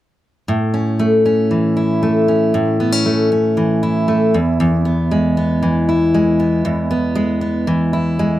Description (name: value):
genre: pop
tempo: 117 BPM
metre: 4/4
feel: straight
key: unclear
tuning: A4 = 441 Hz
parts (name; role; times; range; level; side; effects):
- picked steel-string acoustic guitar; accompaniment; 0.5-8.4 s; E2 to E4; -14 LUFS; equal; none
room: light reverb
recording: dry, close 1970s-style studio recording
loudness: -14 LUFS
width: side -14 dB against mid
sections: 0.5-8.4 A section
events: none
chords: 0.5 A; 4.3 E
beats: | 0.48 0.99 1.51 2.02 | 2.54 3.05 3.57 4.08 | 4.60 5.11 5.62 6.14 | 6.65 7.17 7.68 8.19